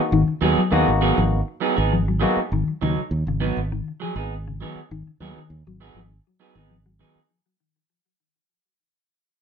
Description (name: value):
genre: afrobeat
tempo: 100 BPM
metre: 4/4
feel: straight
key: G# dorian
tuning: A4 = 440 Hz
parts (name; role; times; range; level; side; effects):
- barky tine electric piano; accompaniment; 0.0-2.4 s; A#3 to F#4; -23 LUFS; left 6 dB; none
- mellow electric guitar; arpeggios; 0.1-7.2 s; C#3 to F#3; -25 LUFS; left 6 dB; phaser, tape echo
- fingered electric bass; bass; 0.1-7.2 s; G#1 to D#2; -23 LUFS; right 1 dB; none
- electric guitar through a small old amp; stabs; 0.4-7.2 s; F#3 to G#4; -24 LUFS; right 5 dB; none
room: light reverb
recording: none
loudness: -19 LUFS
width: side -7 dB against mid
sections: 0.0-7.3 A section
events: fade-out 0.0-7.3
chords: 0.0 G#m7